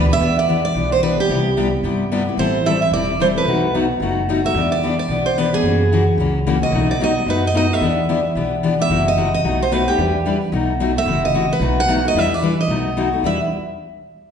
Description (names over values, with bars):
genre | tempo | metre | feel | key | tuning
acoustic string swing (jazz manouche) | 221 BPM | 4/4 | swing 58% on 8ths | E minor, E harmonic minor from 8.9 s | A4 = 442 Hz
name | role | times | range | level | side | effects
picked steel-string acoustic guitar | accompaniment | 0.0-13.4 s | B2 to B4 | -18 LUFS | left 3 dB | none
upright bass | bass | 0.0-13.4 s | E1 to G2 | -23 LUFS | right 1 dB | none
picked steel-string acoustic guitar | melody | 0.1-13.4 s | G4 to F#5 | -20 LUFS | right 4 dB | none
room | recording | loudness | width
wet recital hall reverb, RT60 1.4 s | recorded in a church or concert hall, nothing above 10.7 kHz | -16 LUFS | side -7 dB against mid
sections
0.2-8.9 A section; 8.9-13.2 B section; 13.2-14.3 C section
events
none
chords
0.2 Em7; 1.3 Cmaj7; 2.4 Am7; 3.5 B7; 4.6 Em7; 5.6 F#7; 6.7 B7; 7.8 Em7; 8.9 F#m7b5; 9.4 B7; 10.0 Em7; 10.5 B7; 11.1 F#m7b5; 11.6 B7; 12.2 Em7; 12.7 B7; 13.2 Em7